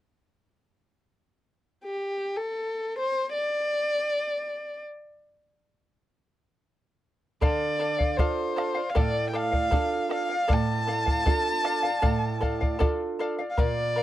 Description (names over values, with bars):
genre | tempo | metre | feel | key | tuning
andean folk, Andean ensemble | 78 BPM | 4/4 | straight | D minor pentatonic | A4 = 445 Hz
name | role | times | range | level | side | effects
rich violin | melody | 1.8-14.0 s | G4 to A5 | -28 LUFS | equal | none
charango | accompaniment | 7.4-14.0 s | A4 to F5 | -30 LUFS | left 4 dB | none
nylon-string guitar | accompaniment | 7.4-14.0 s | A2 to A4 | -30 LUFS | right 5 dB | none
bombo | percussion | 7.4-13.8 s | none | -26 LUFS | equal | none
room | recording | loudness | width
light reverb | dry, close 1970s-style studio recording | -24 LUFS | side -14 dB against mid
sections
1.3-7.4 A section; 7.4-14.0 B section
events
none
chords
1.3 N.C.; 7.4 Dm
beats
| 1.25 2.02 2.79 3.56 | 4.34 5.11 5.88 6.65 | 7.42 8.19 8.96 9.73 | 10.51 11.28 12.05 12.82 | 13.59